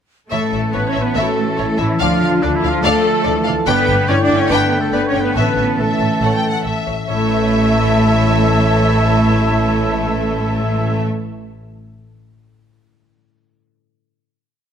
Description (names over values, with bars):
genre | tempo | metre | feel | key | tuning
cinematic, heroic adventure film score | 142 BPM | 4/4 | straight | A mixolydian | A4 = 440 Hz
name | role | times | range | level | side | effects
warm symphonic violin section | melody | 0.3-11.0 s | C#5 to G5 | -23 LUFS | left 4 dB | none
bright flute section | second line | 0.3-11.0 s | D4 to A5 | -26 LUFS | left 1 dB | none
clear oboe | second line | 0.3-11.0 s | D4 to D5 | -26 LUFS | right 1 dB | none
warm clarinet | second line | 0.3-11.0 s | D4 to D5 | -28 LUFS | left 2 dB | none
warm symphonic violin section | second line | 0.3-11.0 s | A3 to D5 | -28 LUFS | left 3 dB | none
rich symphonic viola section | accompaniment | 0.3-11.0 s | D4 to D5 | -24 LUFS | right 1 dB | none
warm trombone section | sustained chords | 0.3-11.0 s | A2 to C#4 | -25 LUFS | right 3 dB | none
concert harp | arpeggios | 0.3-11.4 s | G2 to G5 | -26 LUFS | left 10 dB | none
warm trumpet | stabs | 0.3-11.0 s | E5 to A5 | -25 LUFS | right 2 dB | none
rich studio double bass section | bass | 0.3-11.0 s | G1 to D2 | -20 LUFS | equal | none
rich symphonic cello section | bass | 0.3-11.0 s | D3 to D4 | -21 LUFS | right 3 dB | none
dark French horn section | sustained chords | 1.2-11.0 s | E3 to F#4 | -25 LUFS | left 4 dB | none
room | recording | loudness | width
moderate scoring stage reverb, RT60 1.6 s | none | -13 LUFS | side -8 dB against mid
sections
0.3-7.1 theme; 7.1-10.5 final chord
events
none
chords
0.3 A; 2.0 Dm; 3.7 G; 5.4 A